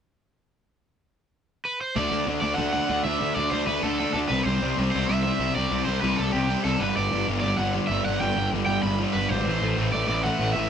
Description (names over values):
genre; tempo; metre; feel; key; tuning
punk; 192 BPM; 4/4; straight; unclear; A4 = 440 Hz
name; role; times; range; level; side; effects
cranked stack guitar; melody; 1.7-10.7 s; G4 to B5; -28 LUFS; right 2 dB; overdrive
distorted electric guitar; riff; 2.0-10.7 s; G2 to D4; -28 LUFS; left 6 dB; distortion
sludgy distorted guitar; riff; 2.0-10.7 s; G2 to D4; -29 LUFS; right 6 dB; overdrive
fuzz picked electric bass; bass; 2.0-10.7 s; G1 to D2; -28 LUFS; equal; overdrive
room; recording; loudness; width
moderate studio ambience, RT60 0.5 s; band playing live in one room; -22 LUFS; side -8 dB against mid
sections
0.7-2.0 A section; 2.0-10.7 B section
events
none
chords
0.7 N.C.; 2.0 D; 4.3 C5; 6.8 G5; 9.5 Am